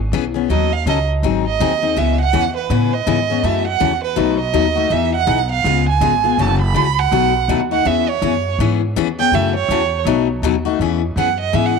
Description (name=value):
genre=acoustic string swing (jazz manouche)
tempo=163 BPM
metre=4/4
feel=swing 61% on 8ths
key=E major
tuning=A4 = 444 Hz
part: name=upright bass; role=bass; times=0.0-11.8 s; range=F#1 to A2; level=-20 LUFS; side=right 1 dB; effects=transformer saturation
part: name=picked steel-string acoustic guitar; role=accompaniment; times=0.1-11.7 s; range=B2 to A4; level=-18 LUFS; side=left 13 dB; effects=none
part: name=rich violin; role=melody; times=0.5-11.8 s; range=B4 to B5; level=-18 LUFS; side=right 12 dB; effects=none
room=moderate spring reverb, RT60 2.5 s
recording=1960s-style stereo with parts hard left and right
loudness=-14 LUFS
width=side -5 dB against mid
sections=0.0-10.8 A section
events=violin solo 0.0-11.8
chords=0.5 D#m7b5; 1.2 G#7; 2.0 C#m7; 3.4 F#m7; 4.2 B7; 4.9 Emaj7; 5.6 C#7; 6.4 F#m7; 7.1 B7; 7.9 E6; 9.3 F#m7; 10.1 B7; 10.8 E6